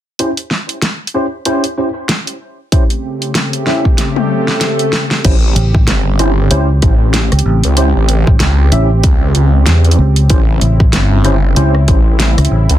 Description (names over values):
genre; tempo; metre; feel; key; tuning
glitch hop; 95 BPM; 4/4; swing 58% on 16ths; unclear; A4 = 441 Hz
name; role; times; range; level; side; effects
tine electric piano; stabs; 0.2-12.0 s; C#4 to E5; -18 LUFS; equal; ensemble chorus, sidechain pumping, low-pass filter, digital delay
pop drum kit; drums; 0.2-12.8 s; crash cymbal, hi-hat, rim click, snare drum, toms; -16 LUFS; equal; none
warm analog pad; sustained chords; 2.7-12.8 s; C#3 to G4; -19 LUFS; equal; chorus, tremolo, sidechain pumping
electronic kick drum; drums; 2.7-12.0 s; none; -11 LUFS; equal; none
swell; sound effects; 4.2-5.2 s; none; -18 LUFS; equal; none
phased detuned saw bass; bass; 5.2-12.8 s; G1 to E2; -11 LUFS; equal; phaser, overdrive
fingered electric bass; bass; 5.6-12.7 s; A1 to C#2; -11 LUFS; equal; none
room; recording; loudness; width
light reverb; dense, heavily limited modern master; -10 LUFS; side -12 dB against mid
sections
0.2-5.2 A section; 5.2-12.8 B section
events
kick drops out 4.0-5.2; drum fill 4.0-5.2; swell 4.2-5.2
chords
0.2 A7#9